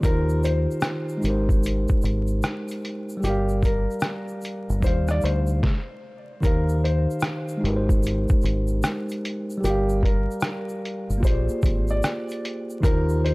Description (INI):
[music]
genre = lo-fi hip hop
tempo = 75 BPM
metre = 4/4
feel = swing 65% on 16ths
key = Eb major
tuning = A4 = 440 Hz
[part]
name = felt-muted upright piano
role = melody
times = 0.0-13.3 s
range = G4 to D5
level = -30 LUFS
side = left 1 dB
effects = tape echo
[part]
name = bright tine electric piano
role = accompaniment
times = 0.0-13.3 s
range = Eb3 to F5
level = -27 LUFS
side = equal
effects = none
[part]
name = deep dub fingered electric bass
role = bass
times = 0.0-13.3 s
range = G1 to Eb2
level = -24 LUFS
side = equal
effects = none
[part]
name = lo-fi sampler-style drum kit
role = drums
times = 0.0-13.3 s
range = hi-hat, kick drum, rim click, snare drum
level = -23 LUFS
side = equal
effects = none
[part]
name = egg shaker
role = percussion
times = 0.0-13.2 s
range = none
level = -47 LUFS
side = equal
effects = none
[sound]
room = digital ambience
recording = dry, gritty hardware recording, vinyl crackle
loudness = -21 LUFS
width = side -24 dB against mid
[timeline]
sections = 0.0-6.4 A section; 6.4-13.3 B section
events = stop 5.6-6.4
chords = 0.0 Eb6; 1.2 Abmaj7; 3.2 Gm7; 4.8 Ebmaj7; 6.4 Eb6; 7.6 Abmaj7; 9.6 Gm7; 11.2 Bb13; 12.8 Eb6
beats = | 0.03 0.83 1.63 2.43 | 3.23 4.03 4.83 5.63 | 6.43 7.23 8.03 8.83 | 9.63 10.43 11.23 12.03 | 12.83